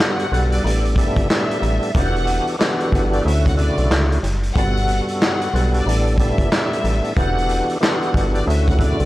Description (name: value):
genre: hip hop, boom-bap hip-hop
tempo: 92 BPM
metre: 4/4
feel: swing 61% on 16ths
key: E dorian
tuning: A4 = 440 Hz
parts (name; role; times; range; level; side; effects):
- clear studio violin section; melody; 0.0-9.1 s; D5 to F#5; -26 LUFS; left 1 dB; high-pass filter, low-pass filter, tape echo
- overdriven tonewheel organ; accompaniment; 0.0-9.1 s; G2 to A4; -22 LUFS; equal; chorus vibrato, slow rotary speaker, high-pass filter, low-pass filter
- raw garage drum kit; drums; 0.0-9.1 s; handclaps, hi-hat, kick drum, snare drum; -21 LUFS; equal; none
- metallic FM bass; bass; 0.3-9.1 s; E1 to D2; -19 LUFS; equal; transformer saturation
room: little or no reverb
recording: dry, gritty hardware recording, transformer saturation, vinyl crackle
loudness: -16 LUFS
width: side -16 dB against mid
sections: 0.0-9.1 A section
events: none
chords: 0.0 Gmaj7; 0.6 A7sus4; 1.9 Em11; 3.3 Dmaj7; 4.6 Gmaj7; 5.9 A7sus4; 7.2 Em11; 8.5 Dmaj7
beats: 0.65 1.30 | 1.95 2.60 3.25 3.91 | 4.56 5.21 5.86 6.51 | 7.17 7.82 8.47